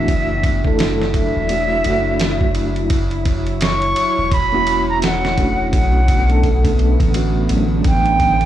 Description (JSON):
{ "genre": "trip hop", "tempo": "85 BPM", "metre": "4/4", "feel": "swing 60% on 16ths", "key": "unclear", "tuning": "A4 = 441 Hz", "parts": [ { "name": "bright silver concert flute", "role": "melody", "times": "0.0-8.5 s", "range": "E5 to C#6", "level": "-20 LUFS", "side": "right 1 dB", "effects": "tape echo" }, { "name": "mellow reed electric piano", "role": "accompaniment", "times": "0.0-8.5 s", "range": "F#3 to A4", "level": "-22 LUFS", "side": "equal", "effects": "fast tremolo, tape echo" }, { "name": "warbly tape-like pad", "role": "sustained chords", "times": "0.0-8.5 s", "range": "D3 to C#5", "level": "-23 LUFS", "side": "equal", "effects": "chorus, built-in reverb" }, { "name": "soft dub sub bass", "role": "bass", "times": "0.0-8.5 s", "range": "D1 to B1", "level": "-19 LUFS", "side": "equal", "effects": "tube saturation" }, { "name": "dusty soul sampler-style drum kit", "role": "drums", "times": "0.1-8.5 s", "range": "kick drum, ride cymbal, snare drum", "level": "-20 LUFS", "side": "equal", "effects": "none" } ], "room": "digital ambience", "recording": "dry, gritty hardware recording, transformer saturation, cassette tape, studio reverb", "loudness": "-14 LUFS", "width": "side -12 dB against mid", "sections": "0.0-8.5 A section", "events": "none", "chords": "0.1 Dadd9; 2.9 F#7; 5.7 Bm7" }